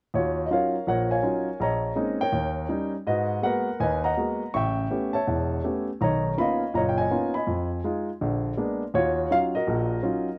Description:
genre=solo jazz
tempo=164 BPM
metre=4/4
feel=swing 64% on 8ths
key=Eb minor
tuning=A4 = 440 Hz
part: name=warm concert grand piano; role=solo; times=0.1-10.4 s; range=E1 to C#6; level=-26 LUFS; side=equal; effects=none
room=light reverb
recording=worn, warbling old tape, cassette tape, warbly pitch drift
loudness=-26 LUFS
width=mono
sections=0.1-10.4 A section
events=none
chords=0.1 Ebm9; 1.6 Bbm11; 2.3 Eb7; 3.1 Abm9; 4.5 A9; 6.0 Bmaj9#11; 7.5 Fm7b5; 8.2 Bb7b9; 8.9 Ebm9

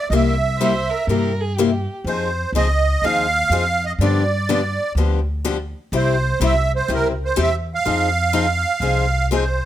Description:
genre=acoustic string swing (jazz manouche)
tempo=124 BPM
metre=4/4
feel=swing 65% on 8ths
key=F minor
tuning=A4 = 440 Hz
part: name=musette accordion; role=melody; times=0.0-9.7 s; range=Bb4 to F5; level=-20 LUFS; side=right 4 dB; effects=slapback echo, plate reverb
part: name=picked steel-string acoustic guitar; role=accompaniment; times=0.1-9.4 s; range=C3 to Ab4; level=-21 LUFS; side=left 6 dB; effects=none
part: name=upright bass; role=bass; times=0.1-9.6 s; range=C2 to G2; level=-21 LUFS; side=equal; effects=none
part: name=warm violin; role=second line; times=0.6-2.0 s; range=G4 to C5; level=-27 LUFS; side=right 2 dB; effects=none
room=light reverb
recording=none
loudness=-17 LUFS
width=side -12 dB against mid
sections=0.0-9.7 A section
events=none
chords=0.1 C7; 2.1 Fm7; 4.0 G7; 5.9 C; 7.9 Fm7

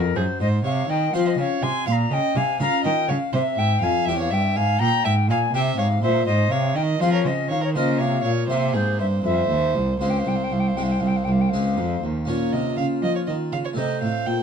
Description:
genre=classical, baroque-style sonata movement with continuo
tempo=81 BPM (dotted quarters)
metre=12/8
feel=straight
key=F minor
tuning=A4 = 440 Hz
part: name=mellow alto recorder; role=melody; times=0.0-14.4 s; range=F4 to C6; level=-26 LUFS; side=left 5 dB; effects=none
part: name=harpsichord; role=accompaniment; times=0.0-14.4 s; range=C2 to C5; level=-26 LUFS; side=left 3 dB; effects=none
part: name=rich cello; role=bass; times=0.0-14.4 s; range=C2 to F3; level=-23 LUFS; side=right 2 dB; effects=none
part: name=rich violin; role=second line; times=0.2-14.4 s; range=Ab4 to Ab5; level=-27 LUFS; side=right 6 dB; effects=none
room=light reverb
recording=dark, warm production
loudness=-19 LUFS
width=side -7 dB against mid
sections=0.0-12.3 A section; 12.3-14.4 A section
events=none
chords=0.4 Fm/Ab; 1.9 Bbm; 3.3 C; 4.8 C7; 6.3 Fm/Ab; 7.8 Bbm; 8.5 C5; 9.3 Fm; 12.3 Bbm; 13.8 Adim

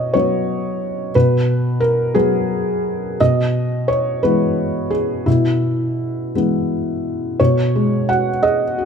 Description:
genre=neoclassical minimalist piano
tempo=58 BPM (dotted quarters)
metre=6/8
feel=uneven beats, rubato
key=unclear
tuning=A4 = 441 Hz
part: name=felt-muted upright piano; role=solo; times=0.0-8.9 s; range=B2 to F#5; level=-16 LUFS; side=equal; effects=none
room=light reverb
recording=close, detailed microphones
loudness=-16 LUFS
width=side -6 dB against mid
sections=0.0-7.4 A section; 7.4-8.9 B section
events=none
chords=0.0 Bsus2; 3.2 Emaj7/B; 7.4 G#m7/B

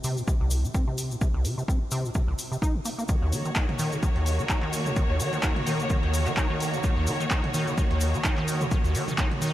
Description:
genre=acid house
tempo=128 BPM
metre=4/4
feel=swing 56% on 16ths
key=unclear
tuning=A4 = 439 Hz
part: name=acid bass, square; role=riff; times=0.0-9.5 s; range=C2 to Eb4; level=-28 LUFS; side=equal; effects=overdrive, sidechain pumping, tape echo
part: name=punchy analog drum machine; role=drums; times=0.0-9.5 s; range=handclaps, hi-hat, toms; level=-32 LUFS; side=equal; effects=overdrive, studio reverb
part: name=tube shaker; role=percussion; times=0.0-9.5 s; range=none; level=-39 LUFS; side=left 3 dB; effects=none
part: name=electronic kick drum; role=drums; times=0.3-9.3 s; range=none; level=-26 LUFS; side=equal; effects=overdrive, studio reverb
part: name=warm studio string section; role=sustained chords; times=3.1-9.5 s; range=Eb3 to Db5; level=-30 LUFS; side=equal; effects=sidechain pumping
room=moderate huge ambient reverb, RT60 7.4 s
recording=dreamy mix soaked in reverb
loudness=-24 LUFS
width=side -14 dB against mid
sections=0.0-9.5 A section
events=filter sweep on acid bass 0.0-9.5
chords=0.0 N.C.; 3.1 Ebm7

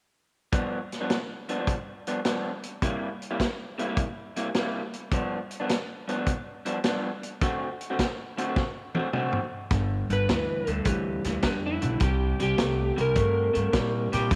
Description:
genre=electric blues shuffle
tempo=104 BPM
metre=4/4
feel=swing 68% on 8ths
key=G mixolydian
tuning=A4 = 439 Hz
part: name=electric guitar through a small old amp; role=riff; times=0.5-14.4 s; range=G2 to F#4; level=-33 LUFS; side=equal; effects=none
part: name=vintage drum kit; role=drums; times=0.5-14.4 s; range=hi-hat, kick drum, snare drum, toms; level=-32 LUFS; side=equal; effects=none
part: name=upright bass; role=bass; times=9.7-14.4 s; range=G1 to Bb2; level=-31 LUFS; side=equal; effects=none
part: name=electric slide guitar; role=melody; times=10.1-14.1 s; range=E4 to B4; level=-31 LUFS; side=equal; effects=none
part: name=growling tenor saxophone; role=second line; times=14.1-14.4 s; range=G4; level=-30 LUFS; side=equal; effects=none
room=light reverb, small room ambience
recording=none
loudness=-28 LUFS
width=mono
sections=0.5-9.7 A section; 9.7-14.4 B section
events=drum fill 8.6-9.7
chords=0.5 G7; 2.8 C7; 5.1 G7; 7.4 D7; 9.7 G7; 12.0 C5

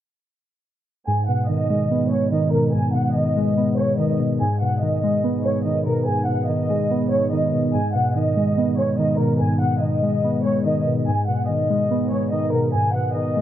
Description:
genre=hip hop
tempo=144 BPM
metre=4/4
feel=half-time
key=G# minor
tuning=A4 = 439 Hz
part: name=warm studio violin section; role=melody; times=1.1-13.4 s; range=A#4 to G#5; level=-23 LUFS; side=equal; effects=low-pass filter
part: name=warbly lo-fi synth keys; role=accompaniment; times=1.1-13.4 s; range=G#2 to B3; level=-20 LUFS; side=equal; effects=chorus, phaser, low-pass filter
room=small room ambience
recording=low-pass filter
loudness=-18 LUFS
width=side -11 dB against mid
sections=1.1-13.4 A section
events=filter sweep 1.1-13.4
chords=1.1 G#m

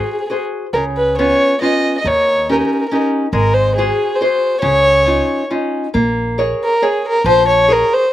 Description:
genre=italian folk, Italian serenade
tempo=139 BPM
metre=3/4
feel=rubato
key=Db major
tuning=A4 = 439 Hz
part: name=dark fiddle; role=melody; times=0.0-8.1 s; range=Ab4 to Eb5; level=-14 LUFS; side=equal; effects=slapback echo
part: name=nylon-string guitar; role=accompaniment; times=0.0-8.0 s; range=Db3 to Db5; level=-17 LUFS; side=left 1 dB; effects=slapback echo
part: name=upright bass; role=bass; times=0.7-7.8 s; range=Ab1 to Eb2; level=-21 LUFS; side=equal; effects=none
room=little or no reverb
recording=recorded outdoors, with no room sound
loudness=-13 LUFS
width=side -13 dB against mid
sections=0.0-5.9 A section; 5.9-8.1 B section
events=none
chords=0.0 Ab7; 0.7 Db7; 2.0 Eb7; 3.3 Ab7; 4.6 Dbadd9; 5.9 Bbm7

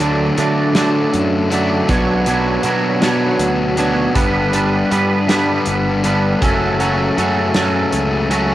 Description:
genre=indie rock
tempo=53 BPM (dotted quarters)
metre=6/8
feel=straight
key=unclear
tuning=A4 = 440 Hz
part: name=overdriven electric guitar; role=riff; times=0.0-8.5 s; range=F#2 to D4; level=-18 LUFS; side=left 3 dB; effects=cassette tape
part: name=twangy electric guitar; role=riff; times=0.0-8.5 s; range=B2 to D5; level=-18 LUFS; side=right 4 dB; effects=ensemble chorus, cassette tape
part: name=growling fingered electric bass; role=bass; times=0.0-8.5 s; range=F#1 to D3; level=-21 LUFS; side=right 1 dB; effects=overdrive
part: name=loose indie drum kit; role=drums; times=0.0-8.5 s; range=hi-hat, kick drum, snare drum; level=-20 LUFS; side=equal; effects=cassette tape
room=light reverb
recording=home recording on cassette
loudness=-14 LUFS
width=side -14 dB against mid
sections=0.0-8.5 A section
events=none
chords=0.0 D; 1.9 Bmadd9; 4.2 G; 6.4 F#m

